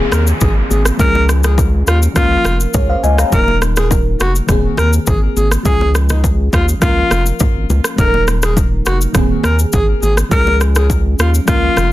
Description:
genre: afrobeats.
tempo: 103 BPM.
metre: 4/4.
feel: straight.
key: unclear.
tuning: A4 = 439 Hz.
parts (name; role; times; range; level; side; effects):
mellow FM electric piano; accompaniment; 0.0-11.9 s; Eb3 to Bb5; -20 LUFS; left 1 dB; chorus, phaser.
saturated sub bass; bass; 0.0-11.9 s; Eb1 to Eb2; -14 LUFS; equal; none.
downlifter; sound effects; 0.0-3.3 s; none; -28 LUFS; equal; none.
breathy alto saxophone; melody; 0.1-11.9 s; Eb4 to Bb4; -18 LUFS; left 1 dB; ping-pong delay.
deep house drum kit; drums; 0.1-11.9 s; kick drum, rim click, shaker; -16 LUFS; equal; soft clipping on snare.
bongos and congas; percussion; 0.1-11.9 s; none; -22 LUFS; left 2 dB; none.
room: light reverb.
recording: dense, heavily limited modern master.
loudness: -11 LUFS.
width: side -15 dB against mid.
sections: 0.0-11.9 A section.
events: none.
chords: 0.0 Abadd9/Eb; 1.0 Db; 2.2 Bbm; 3.3 Ebm; 4.5 Abadd9/Eb; 5.7 Db; 6.8 Bbm; 8.0 Ebm; 9.2 Abadd9/Eb; 10.3 Db.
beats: 0.41 | 0.99 1.58 2.16 2.74 | 3.33 3.91 4.49 5.07 | 5.66 6.24 6.82 7.40 | 7.99 8.57 9.15 9.73 | 10.31 10.90 11.48.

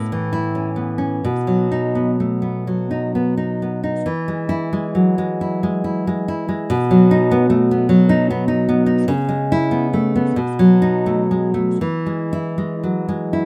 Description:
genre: romantic piece for solo classical guitar.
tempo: 39-51 BPM (dotted quarters).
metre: 6/8.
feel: rubato.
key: E major.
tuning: A4 = 437 Hz.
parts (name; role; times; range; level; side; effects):
nylon-string guitar; solo; 0.0-13.5 s; A2 to E4; -18 LUFS; equal; none.
room: light reverb, small room ambience.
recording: rough home demo mix.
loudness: -18 LUFS.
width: mono.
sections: 0.0-13.5 A section.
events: none.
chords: 0.0 A; 1.2 B; 4.1 E; 6.7 B; 9.1 C#m7; 10.4 B7; 11.8 E.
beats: | 1.25 2.66 | 4.07 5.43 | 6.70 7.91 | 9.10 10.39 | 11.82 13.35.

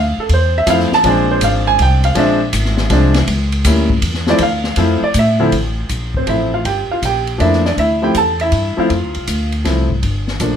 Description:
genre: jazz piano trio.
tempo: 160 BPM.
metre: 3/4.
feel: swing 66% on 8ths.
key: D minor.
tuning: A4 = 441 Hz.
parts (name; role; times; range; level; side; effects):
warm concert grand piano; melody; 0.0-10.6 s; D2 to A5; -15 LUFS; equal; none.
upright bass; bass; 0.0-10.6 s; G1 to A2; -16 LUFS; equal; none.
open jazz drum kit; drums; 0.3-10.5 s; hi-hat, kick drum, ride cymbal, snare drum; -22 LUFS; left 2 dB; none.
room: moderate studio reverb, RT60 0.8 s.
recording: none.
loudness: -12 LUFS.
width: side -8 dB against mid.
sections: 0.0-5.5 A section; 5.5-10.6 B section.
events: grand piano solo 0.0-5.5.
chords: 0.0 Dm9; 1.0 Bb7; 3.3 A7b9 (rootless); 4.4 Dm9; 5.5 Am; 6.7 Gm9; 7.8 Dm9; 10.0 Gm9.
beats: 0.29 0.67 | 1.04 1.42 1.79 | 2.16 2.54 2.91 | 3.29 3.66 4.03 | 4.41 4.78 5.15 | 5.53 5.90 6.28 | 6.65 7.03 7.40 | 7.78 8.15 8.53 | 8.90 9.28 9.66 | 10.03 10.41.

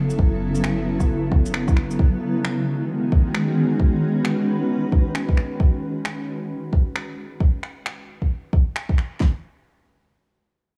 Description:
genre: future garage.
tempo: 133 BPM.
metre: 4/4.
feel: swing 61% on 16ths.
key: unclear.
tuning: A4 = 441 Hz.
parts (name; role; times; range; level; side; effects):
granular cloud pad; sustained chords; 0.0-5.6 s; C#3 to B4; -25 LUFS; equal; built-in reverb, vintage 12-bit sampler grit, sidechain pumping.
soft 808-style bass; bass; 0.0-2.0 s; F#1; -33 LUFS; equal; sidechain pumping.
electronic shaker, finger snaps and rim click; drums; 0.1-9.1 s; none; -33 LUFS; equal; small room ambience.
deep house drum kit; drums; 0.2-9.3 s; kick drum, snare drum; -20 LUFS; equal; small room ambience.
room: wet lush hall reverb, RT60 2.0 s.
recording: dreamy mix soaked in reverb, cassette tape.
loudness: -22 LUFS.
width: mono.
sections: 0.0-9.2 A section; 9.2-10.8 B section.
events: none.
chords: 0.0 F#m; 2.0 G#m7; 5.6 N.C..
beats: | 0.18 0.64 1.09 1.54 | 1.99 2.44 2.89 3.34 | 3.79 4.25 4.70 5.15 | 5.60 6.05 6.50 6.95 | 7.40 7.85 8.30 8.76 | 9.21.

